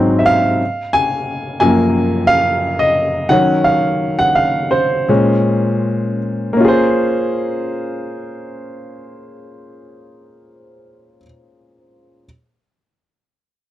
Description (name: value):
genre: soul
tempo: 77-90 BPM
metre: 4/4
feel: swing 54% on 16ths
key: Bb minor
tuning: A4 = 439 Hz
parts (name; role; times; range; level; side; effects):
- warm baby grand piano; solo; 0.0-12.3 s; Gb2 to C6; -14 LUFS; equal; none
room: light reverb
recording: dry, close 1970s-style studio recording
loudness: -13 LUFS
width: side -13 dB against mid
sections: 0.0-6.6 A section; 6.6-9.7 B section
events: grand piano solo 0.0-6.6; slowing down 0.9-6.6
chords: 0.0 Ab9; 0.6 Gbmaj9; 3.3 Ebm7; 5.1 Bbm9